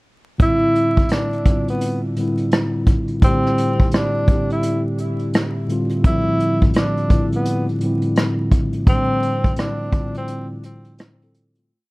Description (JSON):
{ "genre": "lo-fi hip hop", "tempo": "85 BPM", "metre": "4/4", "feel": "swing 64% on 16ths", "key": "D minor", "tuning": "A4 = 440 Hz", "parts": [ { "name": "breathy tenor saxophone", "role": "melody", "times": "0.4-10.5 s", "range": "B3 to E4", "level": "-22 LUFS", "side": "equal", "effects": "low-pass filter, tape echo" }, { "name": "mellow tine electric piano", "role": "accompaniment", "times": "0.4-11.9 s", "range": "A2 to C5", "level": "-20 LUFS", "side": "equal", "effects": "slow stereo tremolo, cassette tape, low-pass filter" }, { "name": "vintage brush drum kit", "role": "drums", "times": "0.4-11.7 s", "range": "hi-hat, kick drum, rim click", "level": "-17 LUFS", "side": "equal", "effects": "none" } ], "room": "moderate studio reverb, RT60 0.6 s", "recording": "dark, warm production, vinyl crackle", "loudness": "-16 LUFS", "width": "side -23 dB against mid", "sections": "0.4-11.7 A section", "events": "fade-out 8.9-11.7", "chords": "0.4 Dm9" }